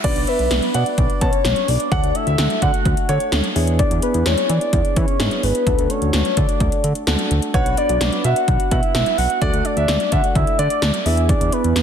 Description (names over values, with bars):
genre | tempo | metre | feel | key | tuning
synth-pop | 128 BPM | 4/4 | straight | unclear | A4 = 438 Hz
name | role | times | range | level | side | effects
soft octave-layered synth lead | melody | 0.0-11.8 s | B4 to F#5 | -21 LUFS | left 1 dB | chorus, phaser, digital delay
warm grand piano | second line | 0.0-3.4, 7.5-10.9 s | C#5 to A5 | -26 LUFS | right 5 dB | digital delay
soft electric-piano-like synth keys | accompaniment | 0.0-11.8 s | A3 to B4 | -27 LUFS | left 1 dB | chorus
fat analog bass | bass | 0.0-11.8 s | G#1 to E3 | -20 LUFS | equal | none
80s electronic pad drums | drums | 0.0-11.8 s | crash cymbal, hi-hat, kick drum, snare drum | -20 LUFS | equal | overdrive
room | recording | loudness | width
light reverb | dense, heavily limited modern master | -16 LUFS | side -8 dB against mid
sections
0.0-11.8 A section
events
none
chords
0.0 Bm; 1.9 D; 3.6 E7; 5.7 D; 7.5 Bm; 9.4 D; 11.1 E7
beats
| 0.04 0.51 0.98 1.45 | 1.92 2.39 2.85 3.32 | 3.79 4.26 4.73 5.20 | 5.67 6.14 6.60 7.07 | 7.54 8.01 8.48 8.95 | 9.42 9.89 10.35 10.82 | 11.29 11.76